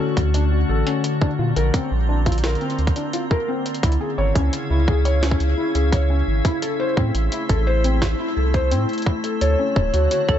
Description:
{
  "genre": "IDM",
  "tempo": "86 BPM",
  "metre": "4/4",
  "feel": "straight",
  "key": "D lydian",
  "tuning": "A4 = 440 Hz",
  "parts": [
    { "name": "icy glass pad", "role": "sustained chords", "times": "0.0-10.4 s", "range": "C#3 to G#4", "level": "-25 LUFS", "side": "left 2 dB", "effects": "chorus, built-in reverb" },
    { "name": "felt-muted upright piano", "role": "arpeggios", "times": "0.0-10.4 s", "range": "C4 to C#5", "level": "-25 LUFS", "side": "left 2 dB", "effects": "low-pass filter, tape echo" },
    { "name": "warm sub bass", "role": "bass", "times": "0.2-10.4 s", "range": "D1 to Bb2", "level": "-20 LUFS", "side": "right 1 dB", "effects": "none" },
    { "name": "electronic kick drum", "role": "drums", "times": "0.2-10.4 s", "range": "none", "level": "-20 LUFS", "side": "right 1 dB", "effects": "small room ambience" },
    { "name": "jungle sampler-style drum kit", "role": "drums", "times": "0.2-10.4 s", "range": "claves, hi-hat, snare drum", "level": "-30 LUFS", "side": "equal", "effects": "small room ambience, ping-pong delay" },
    { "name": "soft struck synth lead", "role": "melody", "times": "9.4-10.4 s", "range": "C#5", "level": "-20 LUFS", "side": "left 1 dB", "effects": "chorus, tremolo, cassette tape" }
  ],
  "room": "light reverb",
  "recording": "dark, warm production, nothing above 7.9 kHz",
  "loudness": "-18 LUFS",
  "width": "side -10 dB against mid",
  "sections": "0.0-10.4 A section",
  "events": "none",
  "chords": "0.0 Dmaj7; 1.0 Bbadd9; 3.8 C#m; 6.6 Am; 9.4 Dmaj7",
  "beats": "0.34 | 1.04 1.74 2.44 3.13 | 3.83 4.53 5.23 5.92 | 6.62 7.32 8.02 8.72 | 9.41 10.11"
}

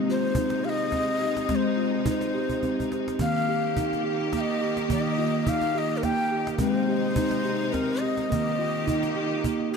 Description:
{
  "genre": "world meditative, meditative tuned percussion",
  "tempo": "106 BPM",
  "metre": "3/4",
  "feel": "swing 54% on 16ths",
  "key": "Eb major",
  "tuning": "A4 = 439 Hz",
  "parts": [
    { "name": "bright symphonic string section", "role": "sustained chords", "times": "0.0-9.8 s", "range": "C3 to G4", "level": "-32 LUFS", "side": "equal", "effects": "shimmer reverb" },
    { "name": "steel tongue drum", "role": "arpeggios", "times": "0.0-9.8 s", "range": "Eb3 to G4", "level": "-26 LUFS", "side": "right 1 dB", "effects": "shimmer reverb, dub echo" },
    { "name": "breathy mellow Native American-style cedar flute", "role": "melody", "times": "0.1-9.8 s", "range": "Bb4 to G5", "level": "-29 LUFS", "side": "left 4 dB", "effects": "shimmer reverb, dub echo" },
    { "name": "cajon", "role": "percussion", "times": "0.3-9.7 s", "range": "none", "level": "-32 LUFS", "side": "right 1 dB", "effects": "none" }
  ],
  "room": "wet plate reverb, RT60 2.4 s",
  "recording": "echo-heavy mix",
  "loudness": "-23 LUFS",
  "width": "side -6 dB against mid",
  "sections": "0.0-9.8 A section",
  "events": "drum fill 2.5-3.2",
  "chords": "0.0 Ab; 3.2 Eb; 6.6 Ab; 8.3 Eb",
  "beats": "0.36 0.93 | 1.50 2.06 2.63 | 3.20 3.76 4.33 | 4.90 5.47 6.03 | 6.60 7.17 7.74 | 8.31 8.88 9.45"
}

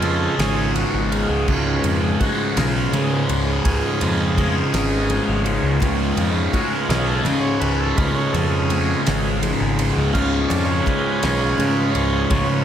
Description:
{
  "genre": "psychedelic rock",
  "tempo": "55 BPM (dotted quarters)",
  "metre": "6/8",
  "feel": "straight",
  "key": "C# major",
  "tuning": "A4 = 440 Hz",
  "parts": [
    { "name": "combo organ", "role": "sustained chords", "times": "0.0-12.6 s", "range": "E#3 to E#5", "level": "-25 LUFS", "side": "right 3 dB", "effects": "spring reverb" },
    { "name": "thick fuzz guitar", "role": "riff", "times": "0.0-12.6 s", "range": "C#2 to G#3", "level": "-21 LUFS", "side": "left 1 dB", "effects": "distortion, phaser" },
    { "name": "fuzz picked electric bass", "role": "bass", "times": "0.0-12.5 s", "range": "G#1 to C#3", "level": "-23 LUFS", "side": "equal", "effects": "overdrive" },
    { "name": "hand-pumped harmonium", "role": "drone", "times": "0.0-12.6 s", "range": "C#2 to G#2", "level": "-30 LUFS", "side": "left 2 dB", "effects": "none" },
    { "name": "damped 70s drum kit", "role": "drums", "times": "0.0-12.5 s", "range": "crash cymbal, kick drum, ride cymbal, snare drum", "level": "-27 LUFS", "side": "equal", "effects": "none" },
    { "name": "congas", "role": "percussion", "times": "0.0-12.5 s", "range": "none", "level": "-33 LUFS", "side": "left 4 dB", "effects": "none" }
  ],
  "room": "moderate huge ambient reverb, RT60 8.4 s",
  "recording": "dreamy mix soaked in reverb",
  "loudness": "-17 LUFS",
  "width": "side -9 dB against mid",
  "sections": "0.0-12.6 A section",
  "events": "transistor combo organ solo 0.0-12.6",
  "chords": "0.0 C#",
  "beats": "0.39 | 1.48 2.56 | 3.65 4.73 | 5.82 6.90 | 7.98 9.07 | 10.15 11.23 | 12.31"
}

